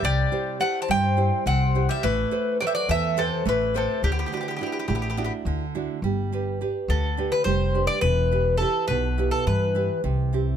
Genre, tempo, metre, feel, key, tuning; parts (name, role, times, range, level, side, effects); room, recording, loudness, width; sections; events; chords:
greek folk; 210 BPM (eighths); 7/8; straight; G major; A4 = 441 Hz
Greek bouzouki; melody; 0.0-10.0 s; G4 to A5; -25 LUFS; left 2 dB
Greek bouzouki; second line; 0.0-5.3 s; C3 to C4; -31 LUFS; left 10 dB
nylon-string guitar; accompaniment; 0.0-10.6 s; B2 to C5; -28 LUFS; right 6 dB
upright bass; bass; 0.0-10.6 s; E1 to G2; -25 LUFS; left 1 dB
little or no reverb; close, detailed microphones; -21 LUFS; side -9 dB against mid
0.0-6.0 A section; 6.0-10.6 B section
0.0 C; 2.0 Amadd9; 4.0 Dadd9; 6.0 G; 8.0 Em; 10.0 C